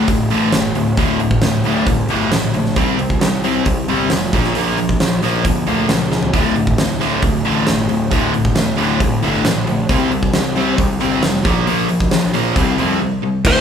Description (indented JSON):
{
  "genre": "hard rock",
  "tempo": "135 BPM",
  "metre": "4/4",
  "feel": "straight",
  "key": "D minor",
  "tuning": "A4 = 440 Hz",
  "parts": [
    { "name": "cranked stack guitar", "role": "riff", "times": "0.0-13.6 s", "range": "D2 to C4", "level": "-20 LUFS", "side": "right 7 dB", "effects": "overdrive" },
    { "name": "crunchy overdriven guitar", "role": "riff", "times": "0.0-13.6 s", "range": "D2 to C4", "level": "-19 LUFS", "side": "left 6 dB", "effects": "harmonic tremolo" },
    { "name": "fuzz picked electric bass", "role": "bass", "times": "0.0-13.6 s", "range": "D1 to F2", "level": "-22 LUFS", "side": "equal", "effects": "overdrive" },
    { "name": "huge arena drum kit", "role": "drums", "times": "0.1-13.6 s", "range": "crash cymbal, hi-hat, kick drum, snare drum, toms", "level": "-18 LUFS", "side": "right 1 dB", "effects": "none" },
    { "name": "high-gain lead guitar", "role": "melody", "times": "13.5-13.6 s", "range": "C5", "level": "-14 LUFS", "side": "equal", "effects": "distortion" }
  ],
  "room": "moderate large studio reverb, RT60 1.2 s",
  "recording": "band playing live in one room",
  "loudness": "-14 LUFS",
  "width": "side -8 dB against mid",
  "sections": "0.0-13.4 A section",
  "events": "drum fill 6.1; break 13.0-13.4",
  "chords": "0.0 D5; 2.8 C5; 4.3 Bb5; 6.3 D5; 9.9 C5; 11.5 Bb5; 12.6 C5"
}